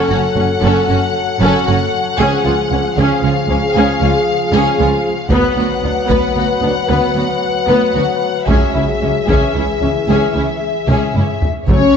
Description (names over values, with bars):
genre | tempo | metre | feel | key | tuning
cinematic, epic orchestral film score | 76 BPM (dotted quarters) | 12/8 | straight | unclear | A4 = 441 Hz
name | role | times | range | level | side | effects
warm symphonic violin section | melody | 0.0-12.0 s | C#5 to F#5 | -20 LUFS | left 5 dB | none
warm symphonic violin section | second line | 0.0-12.0 s | C#4 to C#5 | -21 LUFS | left 4 dB | none
warm symphonic viola section | accompaniment | 0.0-11.8 s | F#3 to C#4 | -21 LUFS | right 2 dB | none
warm French horn section | sustained chords | 0.0-12.0 s | E3 to B4 | -19 LUFS | left 3 dB | none
rich symphonic double bass section | bass | 0.1-11.8 s | F#1 to D2 | -21 LUFS | right 4 dB | none
warm studio cello section | bass | 0.1-11.8 s | C#2 to F#2 | -20 LUFS | right 3 dB | none
taiko ensemble | drums | 5.3-12.0 s | none | -18 LUFS | equal | none
room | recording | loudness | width
moderate concert hall reverb, RT60 2.2 s | nothing above 7.7 kHz | -12 LUFS | side -7 dB against mid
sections
0.0-11.7 A section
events
build-up 0.0-11.7; drum fill 10.9-11.7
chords
0.0 F#m; 2.2 C#; 5.3 Bm/D; 8.5 C#m